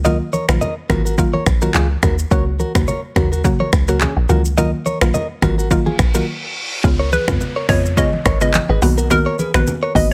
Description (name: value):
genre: afrobeats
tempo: 106 BPM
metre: 4/4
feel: swing 55% on 16ths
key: unclear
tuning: A4 = 440 Hz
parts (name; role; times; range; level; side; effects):
- mallet-like synth pluck; accompaniment; 0.0-10.1 s; Db3 to Gb4; -23 LUFS; equal; chorus
- direct-recorded clean electric guitar; riff; 0.0-10.1 s; Db4 to Eb5; -25 LUFS; equal; delay
- woody log drum bass; bass; 0.0-10.1 s; Ab1 to F2; -20 LUFS; equal; none
- afro-pop drum kit; drums; 0.0-10.1 s; finger snaps, handclaps, hi-hat, kick drum, rim click, shaker; -21 LUFS; equal; none
- congas; percussion; 0.1-10.1 s; none; -28 LUFS; equal; none
- reverse cymbal and downlifter; sound effects; 5.9-10.1 s; none; -32 LUFS; equal; none
- hollow square pluck; melody; 7.1-10.1 s; Bb4 to Eb5; -23 LUFS; equal; chorus, delay
room: digital ambience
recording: none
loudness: -17 LUFS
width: mono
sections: 0.0-6.8 A section; 6.8-10.1 B section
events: reverse cymbal 5.9-6.8; break 6.3-6.8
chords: 0.0 Ebmadd9; 2.3 Gb/Db; 4.3 Ebmadd9; 6.8 Db7; 8.8 Cbmaj7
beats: | 0.05 0.61 1.18 1.75 | 2.31 2.88 3.44 4.01 | 4.58 5.14 5.71 6.27 | 6.84 7.41 7.97 8.54 | 9.10 9.67